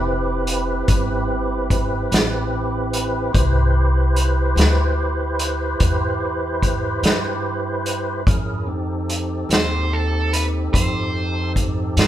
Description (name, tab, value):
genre	slow blues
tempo	49 BPM (dotted quarters)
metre	12/8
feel	straight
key	A minor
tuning	A4 = 440 Hz
part	tonewheel organ	sustained chords	0.0-12.1 s	C4 to C5	-23 LUFS	right 1 dB	overdrive, chorus vibrato, slow rotary speaker
part	upright bass	bass	0.0-12.1 s	F1 to G2	-22 LUFS	equal	none
part	vintage drum kit	drums	0.5-12.1 s	hi-hat, kick drum, snare drum	-20 LUFS	equal	none
part	overdriven electric guitar	melody	9.5-12.1 s	A4 to C5	-25 LUFS	right 2 dB	none
room	moderate large studio reverb, RT60 1.0 s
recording	band playing live in one room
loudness	-18 LUFS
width	side -12 dB against mid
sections	0.0-12.1 A section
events	none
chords	0.0 Am7; 8.3 F7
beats	0.89 2.12 | 3.35 4.58 5.81 7.04 | 8.27 9.50 10.73 11.96